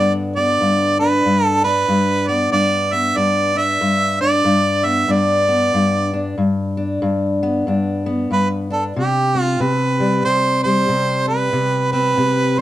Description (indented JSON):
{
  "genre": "acoustic country blues, solo or duo",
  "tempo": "94 BPM",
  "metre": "4/4",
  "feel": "swing 61% on 8ths",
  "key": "G major",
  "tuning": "A4 = 440 Hz",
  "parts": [
    { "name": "warm harmonica", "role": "melody", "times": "0.0-12.6 s", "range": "G4 to E5", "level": "-17 LUFS", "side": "right 2 dB", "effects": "none" },
    { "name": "fingerpicked steel-string acoustic guitar", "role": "accompaniment", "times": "0.0-12.6 s", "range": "G2 to D4", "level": "-18 LUFS", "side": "left 2 dB", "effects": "none" }
  ],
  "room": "moderate studio reverb, RT60 0.6 s",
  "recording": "dark, warm production",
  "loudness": "-15 LUFS",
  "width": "side -14 dB against mid",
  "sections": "0.0-12.6 A section",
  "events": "none",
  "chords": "0.0 G; 8.9 C5"
}